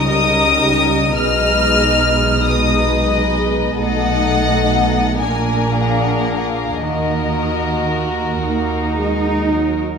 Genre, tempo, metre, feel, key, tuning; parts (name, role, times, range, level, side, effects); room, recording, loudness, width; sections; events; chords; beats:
classical, slow romantic movement for string orchestra; 36-46 BPM (dotted quarters); 6/8; rubato; Eb minor; A4 = 438 Hz
warm studio violin section; melody; 0.0-8.4 s; Eb5 to F6; -19 LUFS; left 3 dB
rich studio violin section; second line; 0.0-9.8 s; Gb4 to Eb5; -21 LUFS; left 3 dB
dark symphonic viola section; accompaniment; 0.0-10.0 s; Gb3 to Eb4; -20 LUFS; equal
dark symphonic double bass section; bass; 0.0-9.8 s; Bb1 to Eb2; -22 LUFS; right 2 dB
warm studio cello section; bass; 0.0-10.0 s; Bb2 to Eb4; -22 LUFS; right 3 dB
wet scoring stage reverb, RT60 2.1 s; minimal, uncompressed stereo recording; -14 LUFS; side -6 dB against mid
0.0-10.0 A section
0.0 Eb7/Db; 1.2 Abm/Cb; 3.8 B7; 5.2 Bb7; 6.8 Ebm
| 1.16 2.46 | 3.79 5.22 | 6.82 8.46